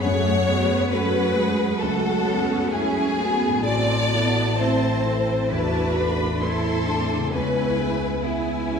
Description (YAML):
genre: cinematic, emotional film score for orchestra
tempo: 66 BPM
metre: 4/4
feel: rubato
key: F# minor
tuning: A4 = 443 Hz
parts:
  - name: rich studio violin section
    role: melody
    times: 0.0-8.8 s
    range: F#5 to C6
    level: -32 LUFS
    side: left 2 dB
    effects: none
  - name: rich symphonic violin section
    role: second line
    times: 0.0-8.8 s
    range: E4 to D5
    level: -24 LUFS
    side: left 2 dB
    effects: none
  - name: dark grand piano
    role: accompaniment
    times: 0.0-8.8 s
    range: C#2 to A4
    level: -26 LUFS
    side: left 2 dB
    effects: none
  - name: warm symphonic viola section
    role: accompaniment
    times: 0.0-8.8 s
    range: F#3 to A4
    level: -29 LUFS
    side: right 3 dB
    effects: none
  - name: concert harp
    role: arpeggios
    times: 0.0-8.8 s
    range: F#2 to G#5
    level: -33 LUFS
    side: left 5 dB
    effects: none
  - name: rich symphonic cello section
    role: bass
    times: 0.0-8.8 s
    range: G#3 to E4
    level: -28 LUFS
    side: right 4 dB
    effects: none
  - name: warm symphonic double bass section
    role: bass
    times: 0.0-8.8 s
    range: A1 to F#2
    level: -29 LUFS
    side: right 2 dB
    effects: none
room: wet scoring stage reverb, RT60 1.6 s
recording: heard from further back in the room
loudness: -20 LUFS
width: side -6 dB against mid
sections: 0.0-8.8 A section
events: none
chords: 0.0 F#madd9; 3.7 Am; 7.3 C#m7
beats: | 0.04 0.93 1.82 2.71 | 3.66 4.59 5.50 6.42 | 7.33 8.24